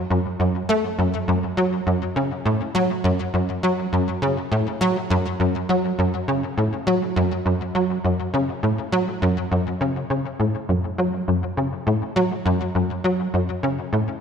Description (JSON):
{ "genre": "ambient", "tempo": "102 BPM", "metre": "4/4", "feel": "straight", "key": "F# minor", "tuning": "A4 = 439 Hz", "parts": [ { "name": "tight sequencer bass", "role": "solo", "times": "0.1-14.1 s", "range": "F#2 to A3", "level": "-20 LUFS", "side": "equal", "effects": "ensemble chorus, ping-pong delay" } ], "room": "wet concert hall reverb, RT60 2.5 s", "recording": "none", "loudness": "-20 LUFS", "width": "side -7 dB against mid", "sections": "0.0-10.7 A section; 10.7-14.2 B section", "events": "none", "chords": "none" }